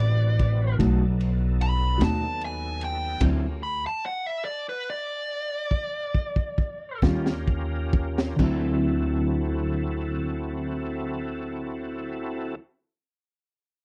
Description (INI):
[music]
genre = slow blues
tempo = 43-50 BPM (dotted quarters)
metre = 12/8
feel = straight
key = D mixolydian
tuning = A4 = 441 Hz
[part]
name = dark smooth lead guitar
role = melody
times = 0.0-7.0 s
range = B4 to B5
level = -33 LUFS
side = equal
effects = overdrive
[part]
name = overdriven tonewheel organ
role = sustained chords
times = 0.0-12.6 s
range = E3 to B4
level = -36 LUFS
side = equal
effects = chorus vibrato, slow rotary speaker
[part]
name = upright bass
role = bass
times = 0.0-12.6 s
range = A1 to D#2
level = -28 LUFS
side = equal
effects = none
[part]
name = crunchy breakbeat drum kit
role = drums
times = 0.0-8.6 s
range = crash cymbal, kick drum, ride cymbal, snare drum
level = -28 LUFS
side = equal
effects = none
[part]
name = mellow electric guitar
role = accompaniment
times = 0.8-12.6 s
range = B2 to F#4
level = -29 LUFS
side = equal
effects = harmonic tremolo
[sound]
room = light reverb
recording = dry, close 1970s-style studio recording, lossy compression artefacts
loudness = -26 LUFS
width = mono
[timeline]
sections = 0.0-8.4 A section; 8.4-13.8 B section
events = lead electric guitar solo 0.0-8.4; slowing down 1.6-8.4; stop 3.2-7.0; drum fill 5.7-8.4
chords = 0.0 D13; 0.8 B7; 3.2 N.C.; 7.0 Eb9; 8.4 D9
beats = 0.80 2.00 | 3.22 4.45 5.72 7.02 | 8.38 9.78 11.17 12.56